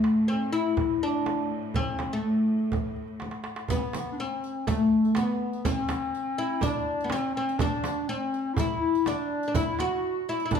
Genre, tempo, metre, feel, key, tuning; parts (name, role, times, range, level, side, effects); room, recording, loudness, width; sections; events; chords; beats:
Arabic maqam ensemble; 123 BPM; 4/4; straight; A maqam rast; A4 = 438 Hz
oud; melody; 0.0-10.6 s; A3 to F#4; -27 LUFS; left 1 dB
clear symphonic cello section; drone; 0.0-3.7 s; A2; -40 LUFS; left 2 dB
darbuka; percussion; 0.0-10.6 s; -34 LUFS; right 2 dB
frame drum; percussion; 0.8-10.6 s; -32 LUFS; right 3 dB
mellow clarinet; second line; 3.7-10.6 s; A3 to F#4; -31 LUFS; left 2 dB
riq; percussion; 3.7-10.6 s; -39 LUFS; right 4 dB
moderate large studio reverb, RT60 1.1 s; band playing live in one room; -25 LUFS; side -7 dB against mid
0.0-3.7 A section; 3.7-10.6 B section
drum fill 3.2-3.7
0.28 0.76 1.25 | 1.74 2.23 2.72 3.21 | 3.69 4.18 4.67 5.16 | 5.64 6.13 6.62 7.11 | 7.59 8.08 8.57 9.06 | 9.54 10.03 10.52